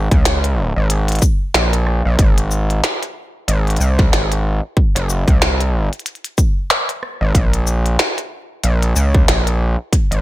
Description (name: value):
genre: glitch hop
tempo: 93 BPM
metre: 4/4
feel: swing 58% on 16ths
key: Bb minor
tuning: A4 = 440 Hz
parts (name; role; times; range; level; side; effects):
- gritty driven synth bass; bass; 0.0-10.2 s; Gb1 to Db2; -16 LUFS; equal; distortion, overdrive
- electronic kick drum; drums; 0.1-10.1 s; none; -14 LUFS; equal; none
- glitchy drum kit; drums; 0.1-10.2 s; hi-hat, rim click, shaker, snare drum; -19 LUFS; equal; gated reverb
room: digital ambience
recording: bright 1980s-style digital production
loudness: -14 LUFS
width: side -16 dB against mid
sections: 0.0-10.2 A section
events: none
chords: none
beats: 0.25 0.90 1.54 | 2.19 2.83 3.48 4.12 | 4.77 5.41 6.06 6.70 | 7.35 7.99 8.64 9.28 | 9.93